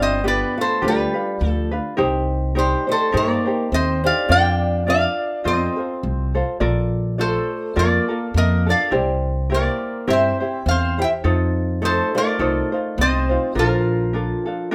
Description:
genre	Hawaiian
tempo	104 BPM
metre	4/4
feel	swing 56% on 8ths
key	Bb major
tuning	A4 = 442 Hz
part	metal-body resonator slide guitar	melody	0.0-14.7 s	F4 to G5	-24 LUFS	equal	plate reverb
part	fingerpicked swing-style acoustic guitar	second line	0.0-14.7 s	F3 to E4	-28 LUFS	equal	none
part	ukulele	accompaniment	0.0-14.7 s	D4 to F5	-26 LUFS	equal	none
part	upright bass	bass	0.0-14.3 s	G1 to G2	-24 LUFS	equal	none
room	moderate studio reverb, RT60 0.5 s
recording	none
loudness	-20 LUFS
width	mono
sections	0.0-14.7 A section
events	none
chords	0.0 G7; 2.0 Cm7; 4.3 Bb/F; 5.5 F7; 6.6 Bbmaj7; 8.9 C7; 11.2 F7; 13.6 Bbmaj7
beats	0.25 0.83 1.41 | 1.98 2.56 3.14 3.72 | 4.30 4.87 5.45 6.03 | 6.61 7.19 7.76 8.34 | 8.92 9.50 10.08 10.66 | 11.24 11.82 12.40 12.98 | 13.55 14.13 14.71

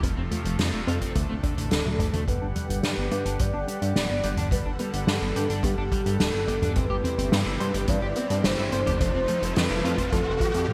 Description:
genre	synthwave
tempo	107 BPM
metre	4/4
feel	straight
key	G major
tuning	A4 = 440 Hz
part	soft supersaw	sustained chords	0.0-10.7 s	C3 to F#5	-37 LUFS	equal	subtle chorus, sidechain pumping
part	soft round pluck	arpeggios	0.0-10.6 s	E3 to F4	-38 LUFS	equal	none
part	electric guitar at the edge of break-up	riff	0.0-10.7 s	D3 to C5	-36 LUFS	equal	lush chorus, low-pass filter, delay
part	chorused synth bass	bass	0.0-10.7 s	D1 to G2	-31 LUFS	equal	none
part	kick drum	drums	0.0-10.5 s	none	-31 LUFS	equal	none
part	soft-mallet drum kit	drums	0.0-10.7 s	hi-hat, snare drum, toms	-31 LUFS	equal	gated reverb
part	warm velvety synth lead	melody	1.7-10.6 s	G4 to D5	-32 LUFS	equal	chorus, delay
part	riser	sound effects	7.0-10.7 s	none	-39 LUFS	equal	none
room	moderate lush hall reverb, RT60 2.6 s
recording	bright 1980s-style digital production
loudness	-26 LUFS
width	mono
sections	0.0-2.3 A section; 2.3-10.7 B section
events	drum fill 1.9-2.3; filter sweep on clean electric guitar 2.3-10.7; riser 7.0-10.7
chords	0.0 F; 1.2 D5; 2.3 Gmaj7; 6.8 Cmaj7/G; 9.0 F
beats	| 0.03 0.59 1.15 1.71 | 2.27 2.83 3.40 3.96 | 4.52 5.08 5.64 6.20 | 6.76 7.32 7.88 8.44 | 9.00 9.56 10.12 10.69

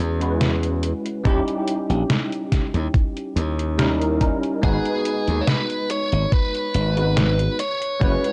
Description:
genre	vaporwave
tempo	71 BPM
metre	4/4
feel	swing 53% on 16ths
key	G# minor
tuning	A4 = 440 Hz
part	bell-like tine electric piano	accompaniment	0.0-8.3 s	G3 to B4	-27 LUFS	equal	ensemble chorus
part	slap bass	bass	0.0-8.2 s	F#1 to E2	-24 LUFS	equal	tube saturation
part	detuned 8-bit digital drum machine	drums	0.2-8.3 s	hi-hat, snare drum	-26 LUFS	equal	vintage 12-bit sampler grit
part	electronic kick drum	drums	1.3-8.2 s	none	-22 LUFS	equal	vintage 12-bit sampler grit
part	biting lead guitar	melody	4.6-8.3 s	G#4 to C#5	-27 LUFS	equal	overdrive, tape echo
room	little or no reverb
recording	dry, gritty hardware recording, cassette tape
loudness	-22 LUFS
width	mono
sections	0.0-8.3 A section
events	none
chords	0.0 E69; 1.3 D#7b9; 4.6 G#m7; 7.6 F#9sus4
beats	0.41 | 1.25 2.10 2.94 3.79 | 4.63 5.48 6.32 7.17 | 8.01

